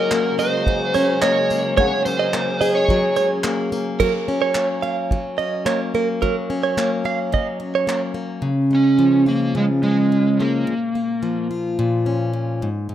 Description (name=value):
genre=acoustic pop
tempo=108 BPM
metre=4/4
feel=straight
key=unclear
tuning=A4 = 436 Hz
part: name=overdriven slide guitar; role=melody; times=0.0-3.3, 8.7-11.5 s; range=Ab3 to Db5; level=-20 LUFS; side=right 1 dB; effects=none
part: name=dark upright piano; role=accompaniment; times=0.0-4.0 s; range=Bb3 to Gb5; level=-31 LUFS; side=left 4 dB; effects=none
part: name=picked plugged-in steel-string acoustic guitar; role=accompaniment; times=0.0-12.9 s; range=Ab2 to Ab4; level=-21 LUFS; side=left 2 dB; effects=none
part: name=warm studio string section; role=sustained chords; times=0.0-4.0 s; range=Db3 to Bb4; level=-31 LUFS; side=right 2 dB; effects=none
part: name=direct-recorded clean electric guitar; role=arpeggios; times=0.0-8.0 s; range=Bb4 to F5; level=-22 LUFS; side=right 7 dB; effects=spring reverb
part: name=unplugged drum kit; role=drums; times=0.1-8.0 s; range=crash cymbal, handclaps, kick drum, tambourine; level=-25 LUFS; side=right 1 dB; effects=none
room=light reverb, small room reverb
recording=rough home demo mix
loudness=-17 LUFS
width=side -11 dB against mid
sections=0.0-4.0 A section; 4.0-8.4 B section; 8.4-12.9 C section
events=none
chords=0.0 Gbadd9; 4.0 Gb; 8.4 Db; 10.7 Bbm